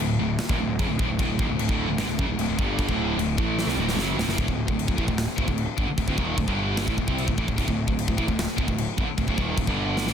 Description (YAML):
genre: heavy metal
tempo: 150 BPM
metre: 4/4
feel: straight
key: unclear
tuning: A4 = 439 Hz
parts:
  - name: fuzz guitar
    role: riff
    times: 0.0-4.4 s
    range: D2 to A3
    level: -30 LUFS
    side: right 1 dB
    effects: distortion
  - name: scooped high-gain guitar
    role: riff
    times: 0.0-10.1 s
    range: D2 to C4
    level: -29 LUFS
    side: left 12 dB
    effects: distortion
  - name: sludgy distorted guitar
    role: riff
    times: 0.0-10.1 s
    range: D2 to C4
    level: -30 LUFS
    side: right 12 dB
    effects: overdrive
  - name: fuzz picked electric bass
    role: bass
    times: 0.0-10.1 s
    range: D1 to C2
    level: -29 LUFS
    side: equal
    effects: overdrive
  - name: tight metal drum kit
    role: drums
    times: 0.0-10.1 s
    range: china cymbal, kick drum, snare drum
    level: -27 LUFS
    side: equal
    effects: none
room: studio reverb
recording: dense, heavily limited modern master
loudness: -22 LUFS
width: side -8 dB against mid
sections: 0.0-4.4 A section; 4.4-10.1 B section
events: drum fill 3.6-4.4, 10.0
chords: 0.0 D; 4.4 D5; 6.5 G5; 6.9 D5; 9.7 G5